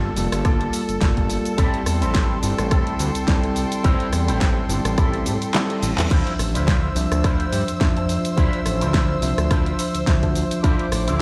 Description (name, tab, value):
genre	nu-disco, nu disco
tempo	106 BPM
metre	4/4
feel	swing 56% on 16ths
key	D minor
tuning	A4 = 441 Hz
part	tine electric piano	accompaniment	0.0-11.2 s	F3 to E5	-27 LUFS	equal	sidechain pumping, delay
part	muted chamber string section	sustained chords	0.0-11.2 s	A4 to E6	-32 LUFS	equal	sidechain pumping
part	electric guitar with an envelope filter	riff	0.0-11.2 s	Bb3 to C5	-32 LUFS	equal	ensemble chorus, vintage 12-bit sampler grit, delay
part	fat analog bass	bass	0.0-11.2 s	F1 to A2	-26 LUFS	equal	sidechain pumping
part	pop drum kit	drums	0.2-11.2 s	cabasa, crash cymbal, handclaps, hi-hat, rim click, snare drum	-29 LUFS	equal	small room reverb
part	electronic kick drum	drums	0.5-10.8 s	none	-23 LUFS	equal	small room reverb
part	reverse cymbal	sound effects	5.5-6.1 s	none	-40 LUFS	equal	none
room	light reverb, digital ambience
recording	played on a big sound system in a bare room, stone room reverb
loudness	-21 LUFS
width	mono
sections	0.0-11.2 A section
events	reverse cymbal 5.5-6.1; kick drops out 5.5-6.1; drum fill 5.5-6.1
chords	0.0 Gm9; 1.6 Am7; 6.1 Dm9